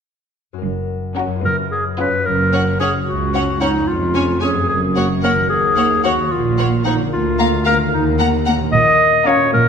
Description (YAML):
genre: cinematic, playful, whimsical film cue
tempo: 74 BPM (dotted quarters)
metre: 6/8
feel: straight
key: F# major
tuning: A4 = 440 Hz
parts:
  - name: concert harp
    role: arpeggios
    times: 0.5-9.7 s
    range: E#2 to C#5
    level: -24 LUFS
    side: left 7 dB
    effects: none
  - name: dark studio double bass section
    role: bass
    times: 0.6-9.7 s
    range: E#1 to D#2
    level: -23 LUFS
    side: right 4 dB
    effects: none
  - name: rich studio cello section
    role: bass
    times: 0.6-9.7 s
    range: C#2 to A#2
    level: -23 LUFS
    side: right 3 dB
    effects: none
  - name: warm studio violin section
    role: melody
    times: 1.2-9.5 s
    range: A#4 to A#5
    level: -27 LUFS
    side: left 3 dB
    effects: none
  - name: warm studio violin section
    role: second line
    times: 1.2-9.5 s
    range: E#4 to F#5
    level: -25 LUFS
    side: left 4 dB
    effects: none
  - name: warm studio viola section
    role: accompaniment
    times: 1.2-9.5 s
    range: A#3 to C#4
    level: -25 LUFS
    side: right 2 dB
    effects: none
  - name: clear clarinet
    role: second line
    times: 1.4-9.7 s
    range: D#4 to D#5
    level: -16 LUFS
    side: equal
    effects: none
room: moderate scoring stage reverb, RT60 1.9 s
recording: minimal, uncompressed stereo recording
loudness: -14 LUFS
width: side -6 dB against mid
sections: 0.6-2.3 A section; 2.3-9.7 B section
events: none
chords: 0.6 F#; 1.4 C#7/F#; 2.3 F#; 3.9 C#/E#; 4.7 F#; 5.5 D#m7; 7.1 A#/D; 7.9 D#m; 8.7 A#m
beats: | 0.62 1.44 | 2.26 3.08 | 3.88 4.70 | 5.50 6.31 | 7.12 7.92 | 8.73 9.53